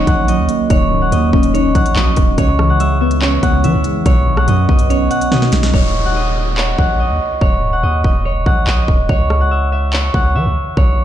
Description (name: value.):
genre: hip hop, drill.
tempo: 143 BPM.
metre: 4/4.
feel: half-time.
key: Eb phrygian.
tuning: A4 = 440 Hz.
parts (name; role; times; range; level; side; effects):
Celtic harp; melody; 0.0-11.0 s; Db5 to Gb5; -18 LUFS; equal; low-pass filter, ping-pong delay.
warbly lo-fi synth keys; accompaniment; 0.0-5.8 s; B2 to Eb4; -17 LUFS; equal; chorus, low-pass filter.
long sustained 808-style bass; bass; 0.0-11.0 s; Db1 to Fb3; -16 LUFS; equal; none.
drill drum kit; drums; 0.1-10.9 s; handclaps, hi-hat, kick drum, rim click, snare drum; -15 LUFS; equal; overdrive, vintage 12-bit sampler grit.
downlifter; sound effects; 5.7-9.1 s; none; -26 LUFS; left 1 dB; none.
room: digital ambience.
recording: played on a big sound system in a bare room, large studio reverb.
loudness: -12 LUFS.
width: side -11 dB against mid.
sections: 0.0-5.7 A section; 5.7-11.0 B section.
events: drum fill 5.3-5.7; hi-hats muted 5.7-11.0.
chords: 0.0 Ebm7; 2.4 Dbm7; 4.1 Badd9; 5.7 Eb5; 9.1 Dbm.